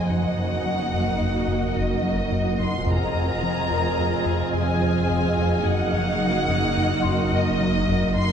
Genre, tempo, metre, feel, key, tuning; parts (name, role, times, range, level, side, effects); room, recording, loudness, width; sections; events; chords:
cinematic, suspense film score; 108 BPM; 5/4; straight; A4 = 440 Hz
warm symphonic violin section; melody; 0.0-8.3 s; Eb5 to C6; -28 LUFS; left 2 dB
warm symphonic violin section; second line; 0.0-8.3 s; Gb4 to Eb5; -30 LUFS; left 1 dB
dark studio viola section; accompaniment; 0.0-8.3 s; Bb3 to F4; -29 LUFS; right 2 dB
ethereal airy pad; sustained chords; 0.0-8.3 s; Ab4 to Gb5; -32 LUFS; right 1 dB; ensemble chorus, built-in reverb
rich symphonic cello section; bass; 0.0-8.3 s; F2 to Gb2; -30 LUFS; right 2 dB
warm symphonic double bass section; bass; 0.0-8.3 s; F1 to Gb1; -31 LUFS; right 5 dB
swarming drone; drone; 0.0-8.3 s; Gb1 to F2; -29 LUFS; right 1 dB; built-in reverb, phaser
celesta; texture; 0.0-8.3 s; Gb4 to C6; -36 LUFS; left 3 dB
round analog bass; riff; 0.1-8.3 s; F2 to Gb3; -27 LUFS; left 2 dB
timpani; percussion; 2.9-3.7 s; F2; -33 LUFS; equal
rich symphonic violin section; texture; 2.9-8.1 s; Eb6 to Ab6; -35 LUFS; left 3 dB
wet concert hall reverb, RT60 1.8 s; dark, warm production, lossy compression artefacts; -20 LUFS; side -8 dB against mid
0.0-8.3 A section
0.1 Ebm/Gb; 2.9 Fm7; 5.7 Ebm/Gb